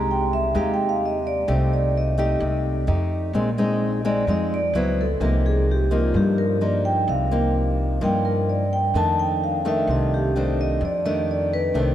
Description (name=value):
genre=bossa nova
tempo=129 BPM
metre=4/4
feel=straight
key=C minor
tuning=A4 = 440 Hz
part: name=vibraphone with medium mallets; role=melody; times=0.0-11.9 s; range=F4 to A5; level=-24 LUFS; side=right 1 dB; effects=none
part: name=nylon-string guitar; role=accompaniment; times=0.0-11.9 s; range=F2 to G4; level=-24 LUFS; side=left 1 dB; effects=none
part: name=upright bass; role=bass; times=0.0-11.9 s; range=Bb1 to G2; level=-24 LUFS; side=equal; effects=none
room=wet cathedral reverb, RT60 5.6 s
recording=in a vast, echoing space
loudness=-19 LUFS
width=side -11 dB against mid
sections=0.0-11.9 A section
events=vibraphone solo 0.0-11.9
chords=0.0 Abmaj7/C; 1.5 Cm6; 2.9 F9; 3.3 Bb9sus4; 4.7 Dbm7; 5.2 Cm7; 8.9 F6